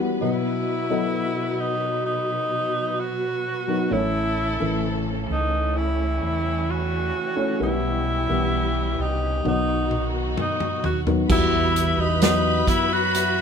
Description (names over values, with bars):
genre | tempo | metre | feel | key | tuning
pop ballad | 65 BPM | 4/4 | straight | E harmonic minor | A4 = 440 Hz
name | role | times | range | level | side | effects
felt-muted upright piano | accompaniment | 0.0-13.4 s | A2 to D#5 | -26 LUFS | left 2 dB | none
dark studio string section | sustained chords | 0.0-13.4 s | B2 to B5 | -29 LUFS | equal | none
clear alto saxophone | melody | 0.2-13.4 s | D#4 to F#4 | -25 LUFS | equal | none
fingered electric bass | bass | 3.9-13.4 s | A1 to F#2 | -26 LUFS | right 1 dB | none
natural country drum kit | drums | 9.5-13.4 s | crash cymbal, hi-hat, kick drum, snare drum, toms | -25 LUFS | right 1 dB | none
picked steel-string acoustic guitar | arpeggios | 11.3-13.4 s | E3 to F#4 | -29 LUFS | left 1 dB | none
impact | sound effects | 11.4-13.4 s | none | -34 LUFS | right 2 dB | none
room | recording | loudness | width
moderate studio reverb, RT60 0.6 s | band playing live in one room | -20 LUFS | side -7 dB against mid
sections
0.0-11.3 A section; 11.3-13.4 B section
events
drum fill 9.4-11.3; impact 11.3-13.4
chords
0.2 B; 3.9 A; 7.6 Em/B; 9.4 B; 11.3 Emadd9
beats
| 0.22 1.14 2.06 2.99 | 3.91 4.83 5.76 6.68 | 7.60 8.53 9.45 10.37 | 11.29 12.22 13.14